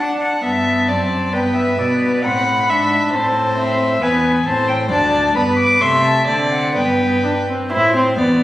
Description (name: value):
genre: quick classical-period movement for string quartet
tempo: 122-137 BPM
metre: 2/4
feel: rubato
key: G major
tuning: A4 = 440 Hz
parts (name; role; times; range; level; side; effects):
- dark violin; melody; 0.0-8.4 s; B4 to D6; -19 LUFS; left 2 dB; none
- rich violin; second line; 0.0-8.4 s; B4 to F#5; -19 LUFS; equal; none
- warm viola; accompaniment; 0.0-8.4 s; A3 to E4; -19 LUFS; equal; none
- warm cello; bass; 0.0-8.4 s; D2 to D4; -23 LUFS; right 1 dB; none
room: moderate scoring stage reverb, RT60 1.9 s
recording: recorded on a phone in the room, club reverb, compression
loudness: -14 LUFS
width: side -14 dB against mid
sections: 0.4-7.7 A section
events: none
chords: 0.4 G; 0.9 D7/F#; 1.3 G; 2.2 Am; 2.7 E7/G#; 3.1 Am; 4.0 E; 4.5 Am; 4.9 D5; 5.4 G; 5.8 Am/C; 6.3 D7; 6.8 G; 7.7 Am